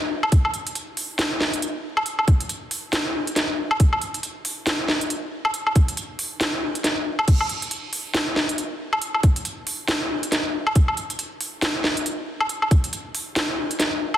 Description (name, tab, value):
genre	dubstep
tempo	138 BPM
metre	4/4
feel	swing 59% on 16ths, half-time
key	none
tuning	none
part	garage drum kit	drums	0.2-14.2 s	crash cymbal, hi-hat, snare drum, woodblock	-22 LUFS	equal	none
part	electronic kick drum	drums	0.3-12.8 s	none	-18 LUFS	equal	none
room	light reverb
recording	dense, heavily limited modern master, vinyl crackle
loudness	-21 LUFS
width	side -12 dB against mid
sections	0.0-14.2 A section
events	none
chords	none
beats	| 0.32 0.75 1.19 1.62 | 2.06 2.49 2.93 3.36 | 3.80 4.23 4.67 5.10 | 5.54 5.97 6.41 6.84 | 7.28 7.71 8.15 8.58 | 9.02 9.45 9.88 10.32 | 10.75 11.19 11.62 12.06 | 12.49 12.93 13.36 13.80